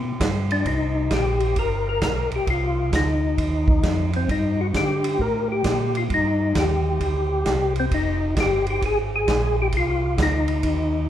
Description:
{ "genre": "soul jazz organ trio", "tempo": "132 BPM", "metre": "4/4", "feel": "swing 66% on 8ths", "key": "C minor", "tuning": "A4 = 439 Hz", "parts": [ { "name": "mellow tonewheel organ", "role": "bass", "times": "0.0-11.1 s", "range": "F1 to D3", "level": "-24 LUFS", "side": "equal", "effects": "chorus vibrato, slow rotary speaker" }, { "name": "vintage drum kit", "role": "drums", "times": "0.2-10.8 s", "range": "hi-hat, kick drum, ride cymbal, snare drum", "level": "-26 LUFS", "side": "right 2 dB", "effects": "none" }, { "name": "percussive tonewheel organ", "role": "melody", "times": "0.5-11.1 s", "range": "C4 to Bb4", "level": "-23 LUFS", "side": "left 2 dB", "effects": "slow rotary speaker, chorus vibrato" } ], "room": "moderate concert hall reverb, RT60 2.2 s", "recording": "recorded in a church or concert hall", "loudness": "-19 LUFS", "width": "side -11 dB against mid", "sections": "0.7-11.1 A section", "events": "none", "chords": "0.0 G; 0.7 Cm9; 7.9 Fm9" }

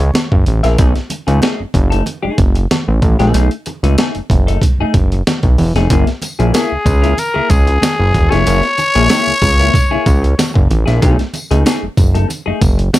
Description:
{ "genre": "funk", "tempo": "94 BPM", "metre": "4/4", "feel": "straight", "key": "unclear", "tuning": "A4 = 441 Hz", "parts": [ { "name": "growling trumpet", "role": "melody", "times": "0.0-0.4, 6.5-10.7 s", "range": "G#4 to C#5", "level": "-16 LUFS", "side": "left 2 dB", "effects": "none" }, { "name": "clean electric guitar", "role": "accompaniment", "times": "0.0-13.0 s", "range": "A3 to E5", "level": "-19 LUFS", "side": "left 4 dB", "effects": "phaser" }, { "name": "fat analog bass", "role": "bass", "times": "0.0-12.9 s", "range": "E1 to C#2", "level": "-13 LUFS", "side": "equal", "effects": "none" }, { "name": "breakbeat sampler-style drum kit", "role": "drums", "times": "0.0-13.0 s", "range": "hi-hat, kick drum, snare drum", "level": "-14 LUFS", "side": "equal", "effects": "none" }, { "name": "congas", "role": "percussion", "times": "0.1-13.0 s", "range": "none", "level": "-24 LUFS", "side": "right 4 dB", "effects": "none" }, { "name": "tambourine", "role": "percussion", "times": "6.2-13.0 s", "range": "none", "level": "-29 LUFS", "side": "left 2 dB", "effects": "none" } ], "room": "little or no reverb", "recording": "none", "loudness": "-11 LUFS", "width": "side -16 dB against mid", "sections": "0.0-13.0 A section", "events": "none", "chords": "0.0 F#9; 0.8 B13; 5.9 F#9; 11.0 B13" }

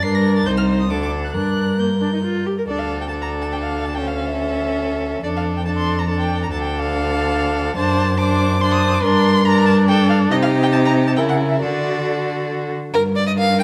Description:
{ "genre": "quick classical-period movement for string quartet", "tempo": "140 BPM", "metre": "3/4", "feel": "straight", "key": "D minor, G minor from 7.8 s", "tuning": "A4 = 440 Hz", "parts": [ { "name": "rich violin", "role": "melody", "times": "0.0-13.6 s", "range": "D4 to C7", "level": "-27 LUFS", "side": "equal", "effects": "none" }, { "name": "clear violin", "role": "second line", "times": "0.0-13.6 s", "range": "G4 to G5", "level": "-26 LUFS", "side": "equal", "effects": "none" }, { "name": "rich viola", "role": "accompaniment", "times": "0.0-13.6 s", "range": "Bb3 to Bb4", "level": "-25 LUFS", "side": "equal", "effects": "none" }, { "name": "rich cello", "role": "bass", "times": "0.0-13.6 s", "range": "C2 to D3", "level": "-22 LUFS", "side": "equal", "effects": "none" } ], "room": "moderate scoring stage reverb, RT60 1.7 s", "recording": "none", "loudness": "-19 LUFS", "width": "mono", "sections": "0.0-2.7 A section; 2.7-12.9 B section", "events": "none", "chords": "0.0 Gm; 0.5 Cm; 0.9 D5; 1.3 Gm; 2.7 D5; 4.0 A/D; 5.2 Dm/F; 6.5 Dm; 7.8 D7/F#; 9.0 Gm; 10.3 Cm; 11.2 C#m6; 11.6 D; 12.9 Gm" }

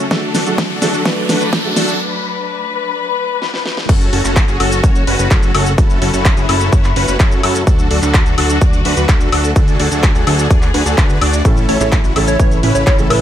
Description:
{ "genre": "EDM, festival progressive house", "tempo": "127 BPM", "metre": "4/4", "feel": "straight", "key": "F# minor", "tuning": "A4 = 440 Hz", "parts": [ { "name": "plucky unison lead", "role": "melody", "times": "0.0-0.2, 11.7-13.2 s", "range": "F#4 to C#5", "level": "-20 LUFS", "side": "equal", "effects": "cassette tape, dub echo" }, { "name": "felt-muted upright piano", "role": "accompaniment", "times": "0.0-2.0, 11.4-13.2 s", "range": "A2 to B4", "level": "-20 LUFS", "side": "right 3 dB", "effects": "sidechain pumping" }, { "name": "warm studio string section", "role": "sustained chords", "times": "0.0-13.2 s", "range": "C#3 to B4", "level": "-22 LUFS", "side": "left 4 dB", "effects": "sidechain pumping" }, { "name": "dense compressed supersaw", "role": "riff", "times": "0.0-13.2 s", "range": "C#4 to D5", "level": "-19 LUFS", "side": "equal", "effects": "vintage 12-bit sampler grit, sidechain pumping, low-pass filter, dub echo" }, { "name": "riser", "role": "sound effects", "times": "0.0-2.0 s", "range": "none", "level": "-23 LUFS", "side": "equal", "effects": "none" }, { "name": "big-room dance drum kit", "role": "drums", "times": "0.1-13.2 s", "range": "crash cymbal, handclaps, hi-hat, shaker, snare drum, woodblock", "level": "-19 LUFS", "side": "left 1 dB", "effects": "none" }, { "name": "electronic kick drum", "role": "drums", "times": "0.1-13.0 s", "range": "none", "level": "-12 LUFS", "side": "equal", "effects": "high-pass filter on kick" }, { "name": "fat analog bass", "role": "bass", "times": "3.9-13.2 s", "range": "F#1 to F#2", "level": "-18 LUFS", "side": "equal", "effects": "sidechain pumping" } ], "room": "little or no reverb", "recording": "high-pass filter", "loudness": "-11 LUFS", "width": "side -11 dB against mid", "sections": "0.0-3.9 A section; 3.9-13.2 B section", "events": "build-up 0.0-3.9; drum fill 0.0-2.0, 3.4-3.9; riser 0.0-2.0; break 2.0-3.9; drop 3.9-13.2", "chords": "0.1 D; 3.9 F#m; 7.7 D; 11.4 A" }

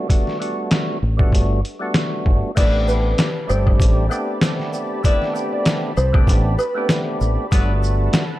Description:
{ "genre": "hip hop, boom-bap hip-hop", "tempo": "97 BPM", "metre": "4/4", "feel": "swing 55% on 16ths", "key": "A dorian", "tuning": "A4 = 438 Hz", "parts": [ { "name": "percussive tonewheel organ", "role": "accompaniment", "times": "0.0-8.2 s", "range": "G3 to G4", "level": "-24 LUFS", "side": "right 1 dB", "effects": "overdrive, slow rotary speaker, cassette tape, high-pass filter, low-pass filter" }, { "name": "trip hop sampler-style drum kit", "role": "drums", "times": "0.1-8.3 s", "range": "crash cymbal, hi-hat, kick drum, shaker, snare drum", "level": "-18 LUFS", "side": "equal", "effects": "none" }, { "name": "deep dub fingered electric bass", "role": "bass", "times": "1.0-8.1 s", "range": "G1 to C2", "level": "-19 LUFS", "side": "equal", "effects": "none" }, { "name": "dark upright piano", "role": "melody", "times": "2.6-7.0 s", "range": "B4 to D5", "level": "-24 LUFS", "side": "equal", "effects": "high-pass filter, low-pass filter, tape echo" }, { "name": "warm analog pad", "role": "sustained chords", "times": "3.1-8.4 s", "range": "G4 to B5", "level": "-33 LUFS", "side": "left 1 dB", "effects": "chorus, high-pass filter, low-pass filter" }, { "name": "mellow horn section", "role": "stabs", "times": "2.6-7.7 s", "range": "F#3 to B4", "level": "-31 LUFS", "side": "left 2 dB", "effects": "high-pass filter, low-pass filter, tape echo" }, { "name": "tube shaker and woodblock", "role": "percussion", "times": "2.6-8.3 s", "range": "none", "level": "-36 LUFS", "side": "left 7 dB", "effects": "none" } ], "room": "little or no reverb", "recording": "dark, warm production", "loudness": "-16 LUFS", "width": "side -15 dB against mid", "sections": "0.0-2.6 A section; 2.6-8.4 B section", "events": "none", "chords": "0.0 Gmaj9; 2.6 Am11; 7.5 Gmaj9" }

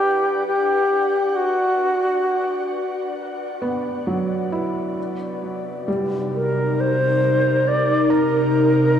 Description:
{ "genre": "ambient", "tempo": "67 BPM", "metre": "4/4", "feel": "straight", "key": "unclear", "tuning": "A4 = 440 Hz", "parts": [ { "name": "bright reedy alto flute", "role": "melody", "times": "0.0-9.0 s", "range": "F#4 to D5", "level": "-20 LUFS", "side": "left 1 dB", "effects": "shimmer reverb, diffuse ambient delay" }, { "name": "ethereal airy pad", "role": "sustained chords", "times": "0.0-9.0 s", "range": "D4 to F#5", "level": "-24 LUFS", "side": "left 1 dB", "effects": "ensemble chorus, built-in reverb, shimmer reverb" }, { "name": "felt-muted upright piano", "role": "arpeggios", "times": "0.0-9.0 s", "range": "F#3 to Bb5", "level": "-26 LUFS", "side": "right 1 dB", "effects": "shimmer reverb, diffuse ambient delay" }, { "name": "organ-like drone", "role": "drone", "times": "5.9-9.0 s", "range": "C3", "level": "-24 LUFS", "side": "right 2 dB", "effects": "ensemble chorus, built-in reverb" } ], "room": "wet concert hall reverb, RT60 2.1 s", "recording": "dark, warm production", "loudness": "-18 LUFS", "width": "side -9 dB against mid", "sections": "0.0-9.0 A section", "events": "fade-in on ambient pad 0.0-9.0; fade-in on felt piano 0.0-9.0", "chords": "0.0 Gmaj7; 5.0 Ebmaj7" }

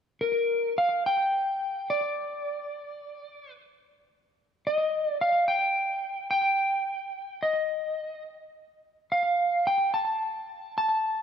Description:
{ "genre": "rock", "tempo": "108 BPM", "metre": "4/4", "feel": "straight", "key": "G minor", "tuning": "A4 = 440 Hz", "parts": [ { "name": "electric slide guitar", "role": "melody", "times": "0.2-11.2 s", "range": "Bb4 to A5", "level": "-25 LUFS", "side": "equal", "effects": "slapback echo" } ], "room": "wet lush hall reverb, RT60 2.2 s", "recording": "none", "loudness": "-25 LUFS", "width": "side -8 dB against mid", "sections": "0.0-11.2 A section", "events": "none", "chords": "none" }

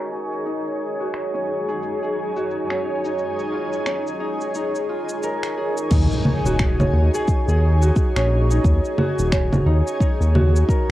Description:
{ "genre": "organic downtempo", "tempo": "88 BPM", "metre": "4/4", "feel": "swing 60% on 16ths", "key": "Eb minor", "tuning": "A4 = 443 Hz", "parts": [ { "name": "granular cloud pad", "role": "sustained chords", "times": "0.0-10.9 s", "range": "Gb3 to Ab5", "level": "-26 LUFS", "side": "equal", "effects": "built-in reverb, sidechain pumping, cassette tape" }, { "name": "Celtic harp", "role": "arpeggios", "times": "0.0-10.9 s", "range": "Db4 to Bb4", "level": "-26 LUFS", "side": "equal", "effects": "low-pass filter, cassette tape, analog delay" }, { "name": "deep house drum kit", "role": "drums", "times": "0.3-10.9 s", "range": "congas, crash cymbal, finger snaps, shaker", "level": "-24 LUFS", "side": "right 1 dB", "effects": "cassette tape" }, { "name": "round analog bass", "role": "bass", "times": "5.9-10.9 s", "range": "Eb1 to Eb2", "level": "-17 LUFS", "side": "equal", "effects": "tube saturation, sidechain pumping" }, { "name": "electronic kick drum", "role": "drums", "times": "5.9-10.8 s", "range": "none", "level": "-19 LUFS", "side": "equal", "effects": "cassette tape" }, { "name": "impact", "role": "sound effects", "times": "5.9-8.6 s", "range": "none", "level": "-27 LUFS", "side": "equal", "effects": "none" } ], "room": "moderate small room reverb, RT60 0.5 s", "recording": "home recording on cassette, low-pass filter", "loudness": "-18 LUFS", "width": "side -15 dB against mid", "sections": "0.0-5.9 A section; 5.9-10.9 B section", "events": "filter sweep on harp 0.0-5.9; filter sweep 0.0-5.9; impact 5.9-8.6", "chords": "0.5 Gb5; 3.2 Db" }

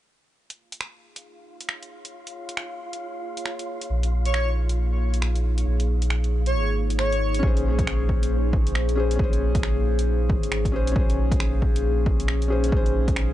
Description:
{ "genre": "future garage", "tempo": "136 BPM", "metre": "4/4", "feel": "swing 62% on 16ths", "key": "Bb minor", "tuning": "A4 = 440 Hz", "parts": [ { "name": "warbly tape-like pad", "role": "sustained chords", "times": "1.8-13.3 s", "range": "Bb3 to Db5", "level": "-31 LUFS", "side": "left 2 dB", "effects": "chorus, built-in reverb, vintage 12-bit sampler grit, sidechain pumping" }, { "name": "wind-like tuned noise texture", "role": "texture", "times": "1.4-7.4 s", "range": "F4 to F5", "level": "-38 LUFS", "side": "right 1 dB", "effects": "built-in reverb" }, { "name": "deep house drum kit", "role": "drums", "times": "0.5-13.3 s", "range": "finger snaps, hi-hat", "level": "-30 LUFS", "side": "right 1 dB", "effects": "overdrive" }, { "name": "soft dub sub bass", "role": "bass", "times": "3.9-13.3 s", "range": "Ab1 to Bb1", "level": "-23 LUFS", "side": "equal", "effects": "tube saturation, sidechain pumping" }, { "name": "airy dreamy lead", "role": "melody", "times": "4.3-7.4 s", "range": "Db5", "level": "-31 LUFS", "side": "equal", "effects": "chorus, analog delay" }, { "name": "felt-muted upright piano", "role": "accompaniment", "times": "7.4-13.3 s", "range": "Db4 to C5", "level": "-29 LUFS", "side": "left 2 dB", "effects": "sidechain pumping, analog delay" }, { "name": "electronic kick drum", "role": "drums", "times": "7.4-13.1 s", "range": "none", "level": "-24 LUFS", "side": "equal", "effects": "overdrive" } ], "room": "little or no reverb", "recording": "dry, gritty hardware recording, nothing above 10.5 kHz", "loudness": "-21 LUFS", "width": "side -14 dB against mid", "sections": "0.4-7.4 A section; 7.4-13.3 B section", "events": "filter sweep on ambient pad 0.4-7.4", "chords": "0.4 Bbm7; 7.4 Bbm9" }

